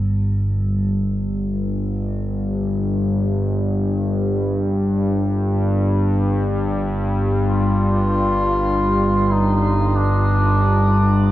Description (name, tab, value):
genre	ambient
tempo	free time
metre	none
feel	none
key	unclear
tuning	A4 = 441 Hz
part	analog drone	drone	0.0-11.3 s	G1 to G2	-17 LUFS	equal	chorus
part	clear duduk	melody	7.4-11.3 s	D4 to F4	-20 LUFS	left 1 dB	shimmer reverb
room	wet huge ambient reverb, RT60 8.3 s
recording	worn, warbling old tape, cassette tape, warbly pitch drift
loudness	-17 LUFS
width	side -14 dB against mid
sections	0.0-11.3 A section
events	none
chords	none